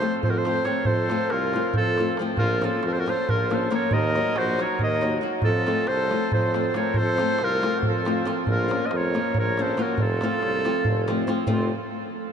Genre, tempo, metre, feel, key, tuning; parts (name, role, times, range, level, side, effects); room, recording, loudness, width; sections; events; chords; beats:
balkan folk, Balkan wedding band; 276 BPM (eighths); 7/8; straight; F phrygian dominant; A4 = 439 Hz
bright clarinet; melody; 0.0-11.7 s; F4 to Eb5; -25 LUFS; right 2 dB
mellow trumpet; second line; 0.0-11.7 s; C4 to C5; -31 LUFS; left 3 dB
nylon-string guitar; accompaniment; 0.0-11.7 s; F3 to Gb4; -28 LUFS; left 2 dB
clear tuba; bass; 0.0-11.7 s; F1 to F2; -29 LUFS; equal
darbuka; percussion; 0.0-11.7 s; -28 LUFS; right 1 dB
wet huge ambient reverb, RT60 7.8 s; in a vast, echoing space, nothing above 10.6 kHz; -21 LUFS; side -7 dB against mid
0.0-11.5 A section
0.0 F; 2.4 Bbm; 3.9 Ebm; 5.4 F; 8.5 Bbm; 10.0 F
0.20 0.42 0.64 | 0.86 1.08 1.29 1.51 1.73 1.95 2.17 | 2.39 2.61 2.83 3.04 3.26 3.48 3.70 | 3.92 4.13 4.35 4.57 4.79 5.00 5.22 | 5.44 5.66 5.87 6.09 6.31 6.53 6.74 | 6.96 7.17 7.39 7.61 7.83 8.04 8.26 | 8.47 8.69 8.90 9.12 9.34 9.55 9.77 | 9.98 10.20 10.41 10.63 10.84 11.05 11.27 | 11.48 11.70